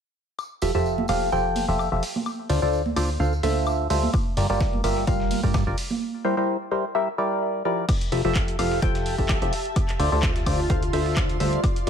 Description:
piano house; 128 BPM; 4/4; swing 54% on 16ths; F major; A4 = 440 Hz
punchy analog drum machine; drums; 0.4-11.9 s; crash cymbal, handclaps, hi-hat, woodblock; -33 LUFS; left 2 dB
tambourine and congas; percussion; 0.4-6.0 s; -32 LUFS; right 5 dB
percussive organ stab; riff; 0.6-11.9 s; D3 to G5; -24 LUFS; equal; chorus, phaser, vintage 12-bit sampler grit, sidechain pumping, ping-pong delay
plucky analog bass; bass; 0.6-11.9 s; F1 to G2; -26 LUFS; equal; sidechain pumping
dusty soul sampler-style drum kit; drums; 4.1-11.9 s; hi-hat, snare drum; -41 LUFS; right 1 dB
electronic kick drum; drums; 4.1-11.7 s; -24 LUFS; equal
granular cloud pad; texture; 8.5-11.9 s; F4 to C6; -31 LUFS; equal; built-in reverb, sidechain pumping
light reverb; -21 LUFS; side -7 dB against mid
0.4-7.9 A section; 7.9-11.9 B section
0.4 Fmaj9; 2.3 Dm7; 4.1 Gm7; 5.8 C7/G; 7.9 Fmaj9; 9.8 Dm7
| 0.39 0.85 1.32 1.79 | 2.26 2.73 3.20 3.67 | 4.14 4.61 5.07 5.54 | 6.01 6.48 6.95 7.42 | 7.89 8.36 8.82 9.29 | 9.76 10.23 10.70 11.17 | 11.64

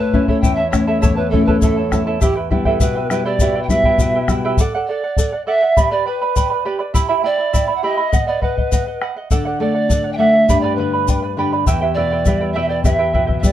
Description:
andean folk, Andean ensemble; 102 BPM; 2/4; straight; E minor; A4 = 440 Hz
polished pan flute; melody; 0.0-13.5 s; G4 to G5; -19 LUFS; right 2 dB
charango; accompaniment; 0.0-13.5 s; E4 to B5; -21 LUFS; right 5 dB
nylon-string guitar; accompaniment; 0.0-4.6, 9.3-13.5 s; E2 to A4; -19 LUFS; left 3 dB
bombo; percussion; 0.1-13.5 s; -18 LUFS; left 1 dB
tube shaker; percussion; 0.4-13.5 s; -31 LUFS; left 8 dB
moderate studio ambience, RT60 0.5 s; dark, warm production; -14 LUFS; side -11 dB against mid
0.0-4.6 A section; 4.6-13.5 B section
0.0 A; 2.2 Em; 4.6 D; 5.8 G; 6.9 Em; 8.1 B; 9.3 D; 10.5 G; 11.7 Em
0.43 | 1.02 1.62 | 2.21 2.80 | 3.39 3.99 | 4.58 5.17 | 5.76 6.35 | 6.95 7.54 | 8.13 8.72 | 9.31 9.90 | 10.49 11.08 | 11.67 12.26 | 12.85 13.43

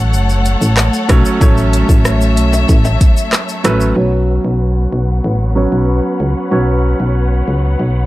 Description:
dancehall; 94 BPM; 4/4; straight; A4 = 440 Hz
warm concert grand piano; accompaniment; 0.0-8.1 s; F#3 to C#5; -18 LUFS; right 2 dB; sidechain pumping, low-pass filter
warm studio string section; sustained chords; 0.0-8.1 s; A3 to F#5; -21 LUFS; left 2 dB; sidechain pumping, low-pass filter
solid FM bass; bass; 0.0-8.1 s; F#1 to C#2; -14 LUFS; equal
afro-pop drum kit; drums; 0.1-4.0 s; handclaps, hi-hat, kick drum, rim click, shaker; -12 LUFS; equal
egg shaker and timbales; percussion; 0.1-4.0 s; -29 LUFS; left 4 dB
small room ambience; dark, warm production; -11 LUFS; side -17 dB against mid
0.0-4.0 A section; 4.0-8.1 B section
filter sweep 4.0-8.1
0.0 F#m; 4.0 Bsus2
0.14 0.78 | 1.41 2.05 2.69 3.33 | 3.97 4.61 5.24 5.88 | 6.52 7.16 7.80

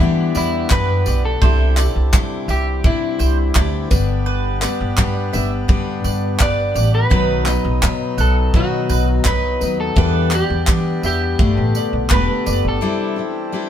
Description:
acoustic pop; 84 BPM; 4/4; straight; G major; A4 = 441 Hz
electric guitar at the edge of break-up; melody; 0.0-13.7 s; E4 to D5; -23 LUFS; equal
picked steel-string acoustic guitar; accompaniment; 0.0-13.7 s; G2 to B4; -22 LUFS; left 5 dB
hand-pumped harmonium; sustained chords; 0.0-13.7 s; D3 to G4; -30 LUFS; right 1 dB
upright bass; bass; 0.0-12.8 s; E1 to E3; -19 LUFS; equal
modern studio drum kit; drums; 0.3-12.6 s; handclaps, kick drum, tambourine; -18 LUFS; right 1 dB
mandolin; arpeggios; 0.4-12.6 s; B4 to F#5; -27 LUFS; right 5 dB
light reverb; band playing live in one room; -15 LUFS; side -10 dB against mid
0.0-12.8 A section
0.0 Em7; 1.4 Cadd9; 3.9 G; 7.1 B; 10.0 Em7; 11.4 Gadd9; 12.8 Cadd9
0.71 | 1.42 2.13 2.85 3.56 | 4.27 4.98 5.70 6.41 | 7.12 7.83 8.54 9.26 | 9.97 10.68 11.39 12.11 | 12.82 13.53

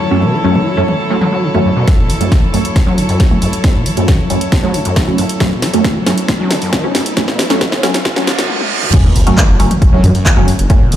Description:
driving peak-time techno; 136 BPM; 4/4; straight; F# minor; A4 = 440 Hz
rich chamber string section; texture; 0.0-8.5 s; F#3 to C#5; -20 LUFS; equal; sidechain pumping
overdriven acid bass; riff; 0.1-11.0 s; F#2 to F#3; -18 LUFS; equal; lush chorus, sidechain pumping, ping-pong delay
filtered dub chord stab; stabs; 0.1-10.8 s; F#3 to C#4; -18 LUFS; right 1 dB; phaser, wide subtle chorus, sidechain pumping, ping-pong delay
techno drum kit; drums; 0.2-11.0 s; crash cymbal, handclaps, hi-hat, snare drum, toms; -18 LUFS; equal
electronic kick drum; drums; 1.9-10.8 s; -13 LUFS; equal
riser, reverse cymbal and sub drop; sound effects; 4.0-10.7 s; -22 LUFS; right 1 dB
detuned saw bass; bass; 8.9-11.0 s; F#1 to F#2; -13 LUFS; equal; tube saturation, sidechain pumping
light reverb; played on a big sound system in a bare room, stone room reverb, high-pass filter; -10 LUFS; side -11 dB against mid
0.0-1.9 A section; 1.9-8.9 B section; 8.9-11.0 C section
build-up 1.9-8.9; drum fill 1.9-8.5, 8.5-8.9; filter sweep on acid bass 1.9-8.9; filter sweep on synth stab 1.9-8.9; filter sweep 1.9-8.9; reverse cymbal 8.1-8.9; drop 8.9-11.0; impact 8.9-10.7
0.0 F#m
| 0.11 0.55 0.99 1.43 | 1.88 2.32 2.76 3.20 | 3.64 4.08 4.52 4.96 | 5.41 5.85 6.29 6.73 | 7.17 7.61 8.05 8.49 | 8.93 9.38 9.82 10.26 | 10.70

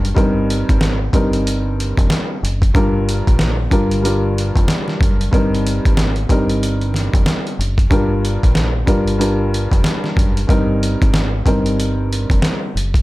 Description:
hip hop, boom-bap hip-hop; 93 BPM; 4/4; swing 61% on 16ths; A4 = 440 Hz
dark upright piano; accompaniment; 0.0-12.7 s; G2 to Bb4; -19 LUFS; equal; cassette tape, high-pass filter, low-pass filter
deep dub fingered electric bass; bass; 0.0-13.0 s; F1 to Bb1; -20 LUFS; equal
trip hop sampler-style drum kit; drums; 0.0-13.0 s; hi-hat, kick drum, snare drum; -17 LUFS; equal
digital ambience; -14 LUFS; side -18 dB against mid
0.0-13.0 A section
0.2 Abmaj7/G; 2.7 Gm7; 5.3 Abmaj7/G; 7.9 Gm7; 10.5 Abmaj7/G
| 0.17 0.81 1.46 2.10 | 2.75 3.39 4.04 4.68 | 5.33 5.97 6.62 7.26 | 7.91 8.55 9.20 9.84 | 10.49 11.13 11.78 12.42

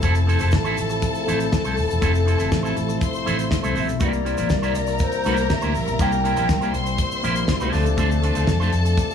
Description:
disco; 121 BPM; 4/4; straight; A4 = 439 Hz
clear studio string section; second line; 0.0-9.1 s; A4 to C6; -26 LUFS; left 3 dB
electric guitar with an envelope filter; accompaniment; 0.0-9.1 s; A3 to C5; -27 LUFS; right 5 dB
percussive tonewheel organ; sustained chords; 0.0-9.1 s; C3 to E4; -28 LUFS; left 3 dB; slow rotary speaker
fingered electric bass with an envelope filter; bass; 0.0-8.9 s; Eb1 to F2; -22 LUFS; equal
damped 70s drum kit; drums; 0.0-9.1 s; hi-hat, kick drum, snare drum; -24 LUFS; equal
tube shaker; percussion; 0.0-9.1 s; -43 LUFS; left 8 dB
mellow wooden-headed alto flute; melody; 3.8-7.0 s; C5 to G5; -26 LUFS; left 2 dB
light reverb, small room ambience; -18 LUFS; side -8 dB against mid
0.0-9.1 A section
0.0 Fmaj7; 4.0 C7; 7.7 Dm7
| 0.03 0.53 1.02 1.52 | 2.02 2.52 3.01 3.51 | 4.01 4.50 5.00 5.50 | 5.99 6.49 6.99 7.48 | 7.98 8.48 8.97

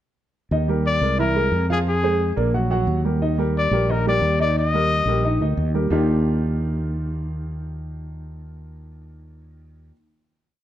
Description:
Afro-Cuban jazz; 178 BPM; 4/4; straight; Eb major; A4 = 440 Hz
warm grand piano; accompaniment; 0.5-9.9 s; Eb3 to Gb5; -24 LUFS; right 2 dB
mellow fretless electric bass; bass; 0.5-9.9 s; Bb1 to F2; -23 LUFS; equal
breathy trumpet; melody; 0.9-5.5 s; G#4 to Eb5; -22 LUFS; left 4 dB
moderate large studio reverb, RT60 1.2 s; -18 LUFS; side -12 dB against mid
0.5-5.9 A section; 5.9-8.6 final chord
0.5 Ebmaj7; 1.2 Caug7; 1.9 Fm; 2.5 Ebm/Bb; 3.2 Ebmaj7; 5.9 Ebmaj9
| 0.52 0.85 1.19 1.53 | 1.87 2.20 2.54 2.88 | 3.22 3.55 3.89 4.23 | 4.56 4.90 5.24 5.58 | 5.91 6.25 6.59 6.93 | 7.27 7.60 7.94 8.28

